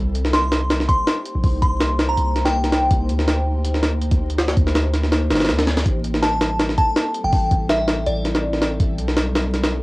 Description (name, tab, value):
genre	drum and bass, jungle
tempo	163 BPM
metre	4/4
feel	swing 53% on 16ths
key	unclear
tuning	A4 = 440 Hz
part	long sustained 808-style bass	bass	0.0-9.8 s	G1 to D2	-22 LUFS	equal	none
part	jungle sampler-style drum kit	drums	0.2-9.7 s	hi-hat, kick drum, snare drum	-19 LUFS	equal	cassette tape
part	glassy synth bell	melody	0.3-3.0, 6.2-8.4 s	D5 to C6	-23 LUFS	equal	chorus, cassette tape, dub echo
room	moderate small room reverb, RT60 0.6 s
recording	home recording on cassette, vinyl crackle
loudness	-17 LUFS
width	side -21 dB against mid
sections	0.0-9.8 A section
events	kick drops out 5.1-5.9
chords	0.0 Cm7; 5.9 Am7